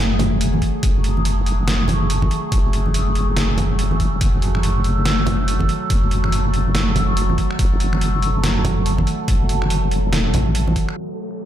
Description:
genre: deep dubstep.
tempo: 142 BPM.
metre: 4/4.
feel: swing 60% on 16ths, half-time.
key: F# minor.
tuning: A4 = 441 Hz.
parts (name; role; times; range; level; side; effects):
overtone-sweeping drone; sustained chords; 0.0-11.5 s; F#3 to A4; -23 LUFS; equal; chorus, built-in reverb, phaser.
deep soft wobble bass; bass; 0.0-10.7 s; E1 to A1; -19 LUFS; equal; chorus, tube saturation.
trip hop sampler-style drum kit; drums; 0.2-11.4 s; finger snaps, hi-hat, snare drum; -26 LUFS; equal; none.
congas; percussion; 0.2-10.7 s; none; -26 LUFS; right 2 dB; dub echo.
electronic kick drum; drums; 0.6-10.9 s; none; -19 LUFS; equal; overdrive.
downlifter; sound effects; 11.1-11.5 s; none; -46 LUFS; right 3 dB; none.
room: light reverb, digital ambience.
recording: low-pass filter.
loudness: -16 LUFS.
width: side -11 dB against mid.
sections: 0.0-11.0 A section.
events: none.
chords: 0.0 F#madd9.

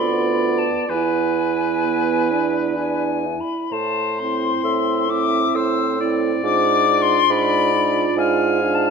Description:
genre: classical, slow romantic movement for wind quintet.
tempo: 62-70 BPM.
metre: 3/4.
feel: rubato.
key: A minor.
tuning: A4 = 441 Hz.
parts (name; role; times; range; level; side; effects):
silver concert flute; melody; 0.0-8.9 s; G#5 to E6; -22 LUFS; left 8 dB; none.
clear oboe; second line; 0.0-8.9 s; B4 to E#5; -25 LUFS; left 3 dB; none.
dark clarinet; accompaniment; 0.0-8.9 s; E4 to E#4; -23 LUFS; right 11 dB; none.
warm French horn; accompaniment; 0.0-8.9 s; B3 to E4; -26 LUFS; right 1 dB; none.
mellow bassoon; bass; 0.0-8.9 s; D2 to A2; -24 LUFS; right 3 dB; none.
room: moderate scoring stage reverb, RT60 1.7 s.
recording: none.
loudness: -17 LUFS.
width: side -5 dB against mid.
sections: 0.0-8.9 A section.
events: none.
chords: 0.0 Bdim/D; 0.9 E; 3.7 Am; 6.4 G#dim7.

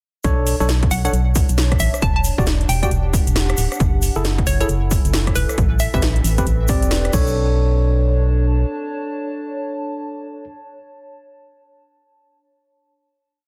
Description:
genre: UK garage, two-step garage.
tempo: 135 BPM.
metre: 4/4.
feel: swing 62% on 16ths.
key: B minor.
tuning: A4 = 440 Hz.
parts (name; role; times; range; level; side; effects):
tine electric piano; stabs; 0.2-10.4 s; C4 to D5; -27 LUFS; equal; tape echo.
organ-like FM bass; bass; 0.2-8.6 s; D1 to B1; -20 LUFS; equal; none.
electronic kick drum; drums; 0.2-7.2 s; none; -23 LUFS; equal; overdrive.
house drum kit; drums; 0.2-7.2 s; crash cymbal, hi-hat, rim click, snare drum; -28 LUFS; equal; overdrive.
egg shaker; percussion; 0.2-7.3 s; none; -33 LUFS; equal; none.
warbly tape-like pad; texture; 1.4-10.8 s; C4 to A5; -33 LUFS; equal; chorus, built-in reverb, phaser, sidechain pumping.
hollow square pluck; melody; 0.9-6.0 s; B4 to A5; -29 LUFS; equal; chorus, tape echo.
room: digital ambience.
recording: dense, heavily limited modern master.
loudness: -18 LUFS.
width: mono.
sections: 0.2-7.4 drop; 7.4-10.9 final note.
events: drop 0.2-7.4.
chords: 0.2 Bm9; 2.0 Em9; 3.8 F#m9; 5.6 Am9; 7.1 Bm9.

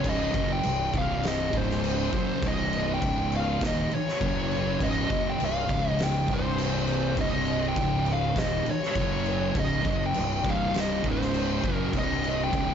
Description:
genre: stoner and doom metal.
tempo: 101 BPM.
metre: 4/4.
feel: straight.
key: unclear.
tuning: A4 = 440 Hz.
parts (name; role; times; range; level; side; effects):
fuzz lead guitar; melody; 0.0-12.7 s; C5 to G5; -30 LUFS; equal; wah, distortion, tape echo.
thick fuzz guitar; riff; 0.0-12.7 s; C2 to F#3; -31 LUFS; left 8 dB; distortion.
thick fuzz guitar; riff; 0.0-12.7 s; C2 to F#3; -31 LUFS; right 10 dB; distortion.
fuzz fingered electric bass; bass; 0.0-12.7 s; C1 to F#1; -33 LUFS; equal; overdrive.
oversized low-tuned drum kit; drums; 0.0-12.7 s; crash cymbal, kick drum, snare drum; -30 LUFS; equal; none.
room: light reverb, small room ambience.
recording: nothing above 7.8 kHz.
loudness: -24 LUFS.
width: side -8 dB against mid.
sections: 0.0-12.7 A section.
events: none.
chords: 0.0 C5; 1.5 Db5; 2.1 Cm; 3.0 Db5; 3.6 Cm; 4.2 F#5; 4.8 Cm; 5.7 Db5; 6.3 C5; 7.8 Db5; 8.4 Cm; 9.0 F#5; 9.6 C5; 11.0 Db5; 11.6 Cm.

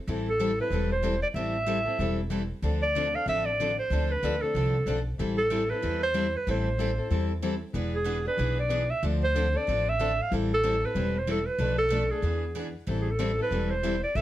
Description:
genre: acoustic string swing (jazz manouche).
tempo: 187 BPM.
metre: 4/4.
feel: swing 60% on 8ths.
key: A minor.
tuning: A4 = 440 Hz.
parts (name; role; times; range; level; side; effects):
picked plugged-in steel-string acoustic guitar; accompaniment; 0.1-14.2 s; B2 to A4; -32 LUFS; left 4 dB; none.
picked steel-string acoustic guitar; accompaniment; 0.1-14.2 s; B2 to B4; -38 LUFS; right 5 dB; none.
upright bass; bass; 0.1-14.2 s; E1 to E2; -30 LUFS; equal; none.
breathy clarinet; melody; 0.3-14.2 s; G#4 to F5; -28 LUFS; right 1 dB; none.
room: moderate studio reverb, RT60 0.8 s.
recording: none.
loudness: -25 LUFS.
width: side -13 dB against mid.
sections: 0.0-12.9 A section; 12.9-14.2 A section.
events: none.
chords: 0.0 Am7; 2.6 Dm7; 5.2 Am7; 7.8 E7; 9.0 Dm7; 10.3 Am7; 11.6 Bm7b5; 12.2 E7; 12.9 Am7.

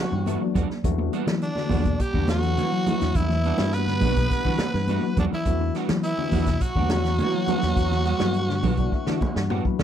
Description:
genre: afrobeat.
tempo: 104 BPM.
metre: 4/4.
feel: straight.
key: E minor.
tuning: A4 = 438 Hz.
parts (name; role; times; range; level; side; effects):
breathy tenor saxophone; melody; 0.0-9.5 s; D4 to B4; -29 LUFS; equal; slapback echo.
muted trombone section; second line; 0.0-9.5 s; D3 to B3; -33 LUFS; right 14 dB; none.
raspy tenor saxophone; second line; 0.0-9.5 s; D4 to B4; -37 LUFS; right 4 dB; none.
tine electric piano; accompaniment; 0.0-9.8 s; E3 to B5; -32 LUFS; left 16 dB; medium tremolo.
mellow electric guitar; arpeggios; 0.0-9.8 s; B2 to F#3; -31 LUFS; left 9 dB; none.
fingered electric bass; bass; 0.1-9.8 s; B1 to E3; -26 LUFS; equal; none.
semi-hollow electric guitar; stabs; 0.3-9.8 s; G3 to F#4; -32 LUFS; right 8 dB; analog chorus.
vintage drum kit; drums; 0.3-9.8 s; hi-hat, kick drum, snare drum, toms; -28 LUFS; equal; none.
congas; percussion; 0.3-9.8 s; none; -29 LUFS; right 2 dB; none.
room: little or no reverb.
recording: dry, close 1970s-style studio recording.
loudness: -21 LUFS.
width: side -9 dB against mid.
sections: 0.0-9.8 A section.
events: tine electric piano fill 0.0-0.8, 8.3-9.8; drum fill 8.9-9.8.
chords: 0.0 Em9.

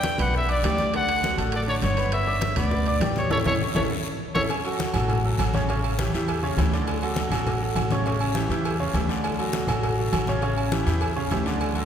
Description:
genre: latin, salsa.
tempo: 202 BPM.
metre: 4/4.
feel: straight.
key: unclear.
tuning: A4 = 441 Hz.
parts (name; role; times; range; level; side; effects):
warm trumpet; melody; 0.0-4.4 s; C#5 to G5; -26 LUFS; left 1 dB; none.
clear concert grand piano; accompaniment; 0.0-11.8 s; C#3 to D6; -27 LUFS; right 2 dB; none.
upright bass; bass; 0.0-11.8 s; G1 to E2; -26 LUFS; equal; none.
congas; percussion; 0.0-11.8 s; none; -31 LUFS; left 2 dB; none.
guiro; percussion; 0.0-11.8 s; none; -38 LUFS; left 5 dB; none.
timbales and agogo bells; percussion; 0.0-11.8 s; none; -32 LUFS; right 2 dB; none.
bongos and cowbell; percussion; 0.1-11.8 s; none; -36 LUFS; left 4 dB; none.
room: wet concert hall reverb, RT60 2.2 s.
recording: recorded in a church or concert hall.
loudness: -22 LUFS.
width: side -8 dB against mid.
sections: 0.0-4.5 A section; 4.5-11.8 B section.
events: band accent 3.3-4.5; drum fill 3.9-4.5.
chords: 0.0 Em7; 0.9 D; 2.1 G; 3.3 A; 4.5 A6; 5.7 A7; 6.9 D; 8.1 A7; 9.2 D; 10.4 A7.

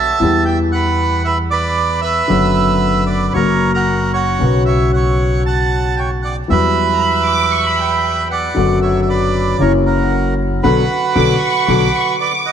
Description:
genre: tango.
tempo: 115 BPM.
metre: 4/4.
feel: rubato.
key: B minor.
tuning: A4 = 440 Hz.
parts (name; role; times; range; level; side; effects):
bandoneon; melody; 0.0-12.5 s; F#4 to A5; -17 LUFS; right 5 dB; tape echo.
warm concert grand piano; accompaniment; 0.0-11.8 s; B1 to B4; -16 LUFS; left 3 dB; lush chorus.
upright bass; bass; 0.0-11.9 s; F#1 to E2; -20 LUFS; right 1 dB; none.
warm studio violin section; second line; 6.9-12.5 s; G5 to D6; -20 LUFS; equal; tape echo.
room: moderate plate reverb, RT60 2.7 s.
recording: dreamy mix soaked in reverb, vinyl crackle.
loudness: -13 LUFS.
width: side -8 dB against mid.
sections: 0.0-12.5 A section.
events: band accent 10.6-12.5.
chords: 0.2 Em; 2.3 Bm/F#; 3.4 F#; 4.4 Bsus2; 6.5 Emadd9; 8.6 Bm/F#; 9.6 F#7; 10.6 Bm.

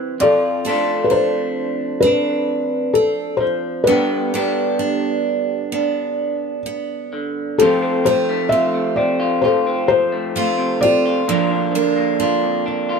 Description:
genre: acoustic folk-pop ballad.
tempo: 65 BPM.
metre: 4/4.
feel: straight.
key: unclear.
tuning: A4 = 438 Hz.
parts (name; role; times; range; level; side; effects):
felt-muted upright piano; melody; 0.0-12.6 s; C4 to E5; -18 LUFS; left 2 dB; none.
electric guitar through a small old amp; accompaniment; 0.0-13.0 s; F2 to G4; -20 LUFS; equal; none.
picked steel-string acoustic guitar; arpeggios; 0.0-13.0 s; F3 to A4; -23 LUFS; right 8 dB; none.
room: little or no reverb.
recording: minimal, uncompressed stereo recording.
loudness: -16 LUFS.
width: side -5 dB against mid.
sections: 0.0-7.6 A section; 7.6-13.0 B section.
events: none.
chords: 0.2 F6; 3.9 G; 7.6 F; 11.3 Bb.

